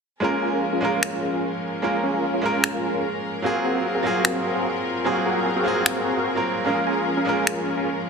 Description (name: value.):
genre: future bass.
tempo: 149 BPM.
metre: 4/4.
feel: half-time.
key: Bb minor.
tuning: A4 = 440 Hz.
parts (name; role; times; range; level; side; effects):
bright baby grand piano; accompaniment; 0.2-8.1 s; Gb3 to Bb4; -25 LUFS; right 2 dB; ping-pong delay.
dark studio string section; sustained chords; 0.2-8.1 s; F3 to Bb4; -29 LUFS; left 2 dB; none.
supersaw chords; riff; 0.2-7.9 s; C4 to Ab5; -24 LUFS; equal; low-pass filter, ping-pong delay.
electronic finger snaps; drums; 1.0-7.6 s; none; -22 LUFS; left 1 dB; soft clipping on snare, small room ambience.
room: moderate digital room reverb, RT60 1.3 s, studio ambience.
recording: dense, heavily limited modern master.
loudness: -21 LUFS.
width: side -5 dB against mid.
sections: 0.2-8.1 A section.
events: filter sweep on supersaw synth 0.2-8.1.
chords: 0.2 Bbm7; 3.4 Ab13; 6.7 Bbm7.